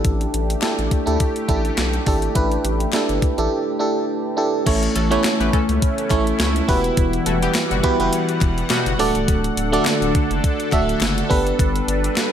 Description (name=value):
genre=1980s-style pop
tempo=104 BPM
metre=4/4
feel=swing 55% on 16ths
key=unclear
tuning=A4 = 440 Hz
part: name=FM electric piano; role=accompaniment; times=0.0-12.3 s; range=A3 to E5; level=-21 LUFS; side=right 3 dB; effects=chorus
part: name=sweeping resonant pad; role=sustained chords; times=0.0-12.3 s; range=D3 to F#5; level=-25 LUFS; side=left 2 dB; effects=chorus
part: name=saturated sub bass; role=bass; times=0.0-12.1 s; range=C#1 to D2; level=-24 LUFS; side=left 1 dB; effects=none
part: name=clean 12-bit digital drum machine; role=drums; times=0.0-12.3 s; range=crash cymbal, hi-hat, kick drum, snare drum, tambourine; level=-21 LUFS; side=left 1 dB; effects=overdrive, gated reverb
part: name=group handclap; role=percussion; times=0.6-12.3 s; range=none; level=-34 LUFS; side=left 9 dB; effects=none
part: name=funky polysynth comp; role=stabs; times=5.0-8.9 s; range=B2 to B4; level=-27 LUFS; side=left 3 dB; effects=chorus, tape echo
room=light reverb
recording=none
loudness=-17 LUFS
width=side -9 dB against mid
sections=0.0-4.7 A section; 4.7-12.3 B section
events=none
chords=0.0 A7sus4; 4.7 A; 6.7 Emadd9; 9.0 D; 11.3 Gadd9